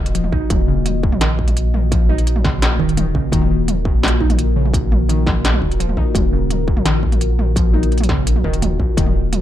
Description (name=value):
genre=half-time drum and bass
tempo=170 BPM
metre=4/4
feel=half-time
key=Eb minor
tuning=A4 = 440 Hz
part: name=deep dark ambient pad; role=sustained chords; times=0.0-9.4 s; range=Bb3 to Eb5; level=-24 LUFS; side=left 3 dB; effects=chorus, built-in reverb, sidechain pumping
part: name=saturated sub bass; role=bass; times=0.0-9.4 s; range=Eb1 to Bb1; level=-18 LUFS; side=equal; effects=none
part: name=warbly dusty pluck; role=arpeggios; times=0.1-9.1 s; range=Eb2 to Eb4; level=-23 LUFS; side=equal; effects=chorus, phaser, ping-pong delay
part: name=industrial drum kit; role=drums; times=0.1-9.4 s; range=hi-hat, snare drum, toms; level=-23 LUFS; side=right 1 dB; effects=none
part: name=electronic kick drum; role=drums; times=0.3-9.0 s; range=none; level=-20 LUFS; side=equal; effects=distortion
room=light reverb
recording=dark, warm production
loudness=-14 LUFS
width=side -12 dB against mid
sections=0.0-9.4 A section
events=none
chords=0.0 Ebmadd9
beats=0.15 | 0.50 0.85 1.21 1.56 | 1.91 2.27 2.62 2.97 | 3.33 3.68 4.03 4.38 | 4.74 5.09 5.44 5.80 | 6.15 6.50 6.86 7.21 | 7.56 7.91 8.27 8.62 | 8.97 9.33